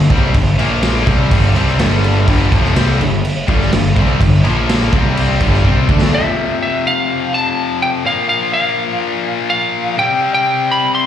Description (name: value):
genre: hard rock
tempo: 125 BPM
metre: 4/4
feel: straight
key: unclear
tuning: A4 = 440 Hz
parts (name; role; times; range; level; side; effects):
- heavy high-gain guitar; riff; 0.0-6.1 s; F2 to D4; -22 LUFS; right 1 dB; distortion
- overdriven semi-hollow guitar; riff; 0.0-6.1 s; F2 to D4; -22 LUFS; right 9 dB; slapback echo
- tight distorted guitar; riff; 0.0-11.1 s; F2 to D4; -19 LUFS; left 8 dB; distortion, slapback echo
- fuzz picked electric bass; bass; 0.0-6.1 s; F1 to D2; -15 LUFS; equal; overdrive
- raw garage drum kit; drums; 0.1-6.1 s; crash cymbal, kick drum, snare drum; -16 LUFS; equal; none
- lightly driven lead guitar; melody; 6.1-11.1 s; E5 to C6; -16 LUFS; right 1 dB; slapback echo, tape echo
room: small room ambience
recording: live gig heard through the venue's PA, club reverb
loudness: -12 LUFS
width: side -10 dB against mid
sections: 0.0-6.1 A section; 6.1-11.1 B section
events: drum fill 5.7-6.1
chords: 0.0 G5; 0.6 Bb5; 1.1 G5; 4.4 Bb5; 4.9 C5; 5.4 G5; 6.1 F; 8.1 Bb5; 10.0 C5